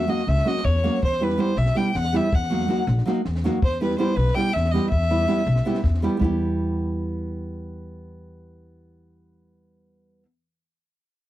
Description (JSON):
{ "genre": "balkan folk, Balkan wedding band", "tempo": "325 BPM (eighths)", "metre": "7/8", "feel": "straight", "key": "E hungarian minor", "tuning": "A4 = 439 Hz", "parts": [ { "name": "clear violin", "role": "melody", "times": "0.0-5.8 s", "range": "B4 to G5", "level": "-26 LUFS", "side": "left 1 dB", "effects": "none" }, { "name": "nylon-string guitar", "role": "accompaniment", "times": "0.0-10.3 s", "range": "F#3 to G4", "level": "-24 LUFS", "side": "right 2 dB", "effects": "none" }, { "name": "upright bass", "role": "bass", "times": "0.0-10.2 s", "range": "A#1 to E2", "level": "-24 LUFS", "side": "left 1 dB", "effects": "none" }, { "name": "compact cocktail drum kit", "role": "percussion", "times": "0.0-6.4 s", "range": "kick drum, snare drum", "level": "-29 LUFS", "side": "equal", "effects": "none" } ], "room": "small room ambience", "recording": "dry, close 1970s-style studio recording", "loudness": "-20 LUFS", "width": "side -14 dB against mid", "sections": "0.0-6.2 A section; 6.2-8.8 B section", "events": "none", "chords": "0.0 F#; 1.0 Em; 2.3 D#m; 3.6 Em" }